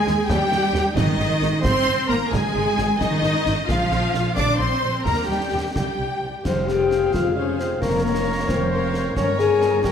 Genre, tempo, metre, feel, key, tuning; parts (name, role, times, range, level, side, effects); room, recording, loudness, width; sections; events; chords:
cinematic, heroic adventure film score; 88 BPM (dotted quarters); 6/8; straight; Ab major, F minor from 6.4 s; A4 = 441 Hz
dark symphonic violin section; melody; 0.0-9.9 s; Bb4 to D6; -28 LUFS; left 3 dB
rich symphonic violin section; second line; 0.0-9.9 s; Db5 to D6; -29 LUFS; left 1 dB
warm symphonic viola section; accompaniment; 0.0-9.9 s; Eb4 to D5; -27 LUFS; right 1 dB
rich symphonic cello section; bass; 0.0-9.9 s; F2 to D4; -26 LUFS; right 2 dB
rich symphonic double bass section; bass; 0.1-9.9 s; F1 to Eb2; -26 LUFS; right 2 dB
concert snare drum, concert bass drum and clash cymbals; drums; 0.1-9.9 s; -28 LUFS; equal
clear clarinet; second line; 6.4-9.9 s; Ab4 to Bb4; -32 LUFS; left 1 dB
silver concert flute; second line; 6.5-9.9 s; Bb4 to Ab5; -29 LUFS; left 2 dB
warm oboe; second line; 6.5-9.9 s; Db5 to F5; -32 LUFS; left 1 dB
mellow French horn section; sustained chords; 6.5-9.9 s; Bb3 to Ab4; -21 LUFS; left 6 dB
moderate scoring stage reverb, RT60 1.7 s; -18 LUFS; side -8 dB against mid
0.0-6.4 A section; 6.4-9.9 B section
0.3 Eb; 1.0 Absus2; 2.3 Ab5; 3.7 Bb; 5.1 Eb; 5.8 C5; 6.4 Fm; 7.8 Bbmadd9/F; 9.2 Gdim